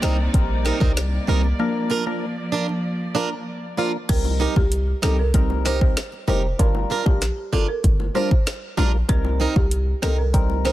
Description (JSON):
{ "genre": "dancehall", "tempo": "96 BPM", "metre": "4/4", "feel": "straight", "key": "C minor", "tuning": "A4 = 440 Hz", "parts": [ { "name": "percussive organ stab", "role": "accompaniment", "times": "0.0-10.7 s", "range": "F3 to Bb4", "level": "-27 LUFS", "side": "left 1 dB", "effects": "chorus, phaser" }, { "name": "warm chamber string section", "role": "sustained chords", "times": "0.0-4.1 s", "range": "C3 to D5", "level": "-29 LUFS", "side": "equal", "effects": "sidechain pumping" }, { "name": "picked plugged-in swing-style acoustic guitar", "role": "arpeggios", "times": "0.0-10.7 s", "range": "C4 to Bb4", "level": "-26 LUFS", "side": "right 5 dB", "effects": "none" }, { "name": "hard-hitting 808-style bass", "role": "bass", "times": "0.0-10.7 s", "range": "F1 to C2", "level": "-22 LUFS", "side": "equal", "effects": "none" }, { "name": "afro-pop drum kit", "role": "drums", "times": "0.0-10.7 s", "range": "crash cymbal, hi-hat, kick drum, snare drum", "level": "-20 LUFS", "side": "equal", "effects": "soft clipping on snare" }, { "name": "folk marimba with medium mallets", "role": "melody", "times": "4.1-10.7 s", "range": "G4 to D5", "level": "-28 LUFS", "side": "right 1 dB", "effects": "digital delay" }, { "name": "bongos", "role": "percussion", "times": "4.2-10.7 s", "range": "none", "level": "-34 LUFS", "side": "left 5 dB", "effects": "none" } ], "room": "small room ambience", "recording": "dense, heavily limited modern master", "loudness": "-19 LUFS", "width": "side -15 dB against mid", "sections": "0.0-4.1 A section; 4.1-10.7 B section", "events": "break 1.6-4.1", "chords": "0.0 Cm7; 1.6 Bb; 4.1 Cm7; 6.6 Gm7; 9.1 Cm7" }